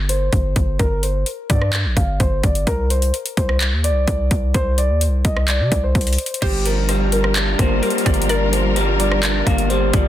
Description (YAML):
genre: hip hop, trap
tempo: 128 BPM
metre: 4/4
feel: half-time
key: G minor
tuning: A4 = 441 Hz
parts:
  - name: hard-hitting 808-style bass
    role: bass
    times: 0.0-10.1 s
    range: G1 to C3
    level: -19 LUFS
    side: equal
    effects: none
  - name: dark concert grand piano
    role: melody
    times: 0.1-10.1 s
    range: G4 to F5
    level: -24 LUFS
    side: left 1 dB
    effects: ping-pong delay
  - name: trap drum kit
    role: drums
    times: 0.1-10.0 s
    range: crash cymbal, handclaps, hi-hat, kick drum, rim click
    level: -20 LUFS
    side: equal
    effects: overdrive
  - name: hollow square pluck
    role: second line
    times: 6.4-10.1 s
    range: Bb4 to D5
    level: -28 LUFS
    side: equal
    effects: chorus, ping-pong delay
  - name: electric guitar through a small old amp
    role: accompaniment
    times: 6.4-10.1 s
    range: G2 to D4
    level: -21 LUFS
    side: left 1 dB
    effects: vibrato effect
  - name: dark studio string section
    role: sustained chords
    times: 6.4-10.1 s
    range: G3 to Bb4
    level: -25 LUFS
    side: equal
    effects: none
room: digital ambience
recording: dense, heavily limited modern master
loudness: -16 LUFS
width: side -12 dB against mid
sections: 0.0-6.4 A section; 6.4-10.1 B section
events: none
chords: 0.0 N.C.; 2.7 Csus2; 6.4 Gm7